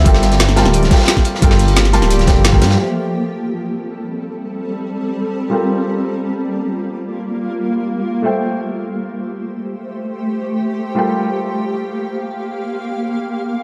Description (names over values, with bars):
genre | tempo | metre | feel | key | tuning
liquid drum and bass | free time | none | none | A phrygian | A4 = 440 Hz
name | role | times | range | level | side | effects
felt-muted upright piano | accompaniment | 0.0-13.6 s | G3 to A5 | -23 LUFS | equal | low-pass filter, delay
shimmering ambient pad | sustained chords | 0.0-13.6 s | F3 to F5 | -23 LUFS | equal | chorus, built-in reverb, sidechain pumping
concert harp | arpeggios | 0.0-4.6 s | G4 to F5 | -31 LUFS | equal | none
dark detuned saw bass | bass | 0.0-2.8 s | D1 to G2 | -16 LUFS | equal | none
crunchy breakbeat drum kit | drums | 0.1-2.8 s | hi-hat, snare drum | -25 LUFS | equal | high-pass filter on hats, studio reverb, high-pass filter on snare, high-pass filter on room
electronic kick drum | drums | 0.1-2.6 s | none | -15 LUFS | equal | overdrive, studio reverb
garage drum kit | drums | 0.1-2.7 s | hi-hat, snare drum | -20 LUFS | equal | overdrive, low-pass filter on hats, studio reverb, low-pass filter on snare
room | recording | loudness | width
light reverb, small room ambience | dark, warm production | -17 LUFS | mono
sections
0.0-2.8 A section; 2.8-13.6 B section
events
drop 0.0-2.8; filter sweep on felt piano 2.8-13.6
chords
0.1 Gm7; 2.8 Am7; 5.5 Gm7; 8.2 Am7; 11.0 Gm7